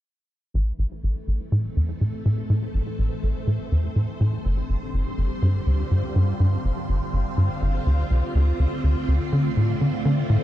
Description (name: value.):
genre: ambient, sequencer-driven space music.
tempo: 123 BPM.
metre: 4/4.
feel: straight.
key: A minor.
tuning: A4 = 437 Hz.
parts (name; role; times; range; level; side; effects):
phased string machine; sustained chords; 0.8-10.4 s; D3 to C5; -30 LUFS; right 1 dB; ensemble chorus, phaser, shimmer reverb.
tight sequencer bass; riff; 0.5-10.4 s; G1 to D3; -21 LUFS; equal; lush chorus, tape echo.
room: light reverb.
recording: dark, warm production.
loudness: -21 LUFS.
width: side -13 dB against mid.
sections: 0.5-10.4 A section.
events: fade-in on string machine 0.5-10.4; filter sweep on analog synth bass 0.5-10.4.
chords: 0.5 Am; 4.4 G7sus4; 8.3 Dm7.